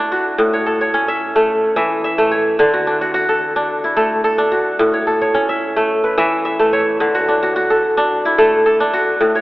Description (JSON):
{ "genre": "west african traditional", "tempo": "109 BPM", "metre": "4/4", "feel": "straight", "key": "D major", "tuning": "A4 = 441 Hz", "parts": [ { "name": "kora", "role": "solo", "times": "0.0-9.4 s", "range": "A2 to E5", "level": "-14 LUFS", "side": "equal", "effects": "none" } ], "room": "wet cathedral reverb, RT60 4.9 s", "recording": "recorded in a church or concert hall, telephone sound", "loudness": "-14 LUFS", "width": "side -19 dB against mid", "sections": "0.0-9.4 A section", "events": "none", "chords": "0.4 A; 2.6 D; 4.8 A; 7.0 D" }